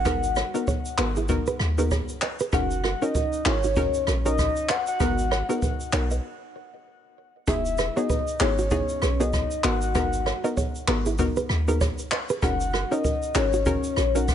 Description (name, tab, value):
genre	afrobeats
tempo	97 BPM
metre	4/4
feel	swing 58% on 16ths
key	G# minor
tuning	A4 = 437 Hz
part	soft octave-layered synth lead	melody	0.0-14.3 s	C#5 to F#5	-28 LUFS	left 2 dB	chorus, phaser, ping-pong delay
part	hollow square pluck	accompaniment	0.0-14.3 s	B3 to A#4	-29 LUFS	left 3 dB	chorus
part	clean 808-style bass	bass	0.0-14.3 s	E1 to D#2	-26 LUFS	equal	none
part	nylon-string guitar	riff	0.1-14.2 s	D#4 to D#5	-30 LUFS	right 6 dB	ping-pong delay
part	jazz brush drum kit	drums	0.1-14.3 s	handclaps, hi-hat, kick drum, rim click, shaker	-28 LUFS	equal	none
room	small room reverb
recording	nothing above 10.5 kHz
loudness	-22 LUFS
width	side -9 dB against mid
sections	0.0-14.3 A section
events	break 6.2-7.5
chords	0.0 G#m7; 2.5 D#m7/F#; 5.0 G#m7; 7.5 Emaj7; 9.6 G#m7; 12.4 D#m7/F#